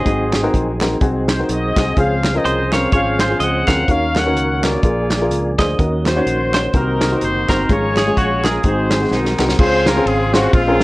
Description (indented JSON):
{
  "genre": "uptempo gospel",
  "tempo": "126 BPM",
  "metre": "4/4",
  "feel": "swing 57% on 8ths",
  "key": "Db major",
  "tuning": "A4 = 440 Hz",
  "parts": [
    { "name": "semi-hollow electric guitar", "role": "melody", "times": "0.0-9.4 s", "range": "Gb4 to F5", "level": "-23 LUFS", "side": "right 2 dB", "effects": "none" },
    { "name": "warm horn section", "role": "melody", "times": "0.0-10.8 s", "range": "Ab3 to Gb5", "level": "-20 LUFS", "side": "left 1 dB", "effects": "none" },
    { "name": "warm upright piano", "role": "accompaniment", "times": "0.0-10.8 s", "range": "Ab2 to Db5", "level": "-20 LUFS", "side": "left 1 dB", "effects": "none" },
    { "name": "tonewheel organ", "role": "sustained chords", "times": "0.0-10.8 s", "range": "Eb3 to C6", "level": "-23 LUFS", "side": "right 1 dB", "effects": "slow rotary speaker, chorus vibrato" },
    { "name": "fingered electric bass", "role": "bass", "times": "0.0-10.8 s", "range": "Gb1 to Eb2", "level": "-22 LUFS", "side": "equal", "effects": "none" },
    { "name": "warm soul drum kit", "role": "drums", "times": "0.1-10.8 s", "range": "crash cymbal, hi-hat, kick drum, ride cymbal, snare drum", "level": "-18 LUFS", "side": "equal", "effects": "none" },
    { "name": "group handclap", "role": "percussion", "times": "0.3-9.5 s", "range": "none", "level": "-27 LUFS", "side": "right 2 dB", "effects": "none" }
  ],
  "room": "light reverb",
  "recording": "worn, warbling old tape, cassette tape, warbly pitch drift",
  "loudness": "-14 LUFS",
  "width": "side -20 dB against mid",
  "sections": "0.0-9.6 A section; 9.6-10.8 B section",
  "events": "drum fill 9.1-9.6",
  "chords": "0.1 Ab7; 2.0 Dbmaj7; 3.9 Ebm7; 4.8 Bb7; 5.8 Ebm7; 6.7 Cm7b5; 7.7 Db/Ab; 8.6 Ab7; 9.6 Dbmaj7"
}